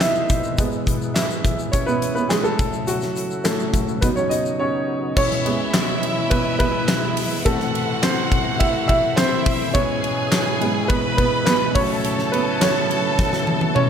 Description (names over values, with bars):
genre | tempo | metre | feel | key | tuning
piano-driven pop | 105 BPM | 4/4 | straight | E major | A4 = 441 Hz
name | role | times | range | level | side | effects
clear upright piano | accompaniment | 0.0-13.9 s | G#2 to E5 | -21 LUFS | right 2 dB | none
percussive tonewheel organ | sustained chords | 0.0-13.9 s | B2 to E4 | -28 LUFS | left 1 dB | chorus vibrato, slow rotary speaker
huge arena drum kit | drums | 0.0-13.9 s | crash cymbal, handclaps, hi-hat, kick drum, ride cymbal, snare drum, toms | -22 LUFS | left 1 dB | none
tube shaker | percussion | 0.0-4.6 s | none | -39 LUFS | left 8 dB | none
bright studio violin section | second line | 5.2-13.9 s | E4 to B5 | -25 LUFS | equal | tape echo
room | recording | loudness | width
light reverb, small room ambience | none | -18 LUFS | side -8 dB against mid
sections
0.0-5.2 A section; 5.2-13.9 B section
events
upright piano solo 0.0-5.2, 5.2-13.9; break 4.6-5.2; drum fill 13.2-13.9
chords
0.0 Am; 0.6 E/G#; 2.6 A6; 4.0 Badd9; 5.2 E; 7.5 Am; 9.8 E/G#; 11.8 A6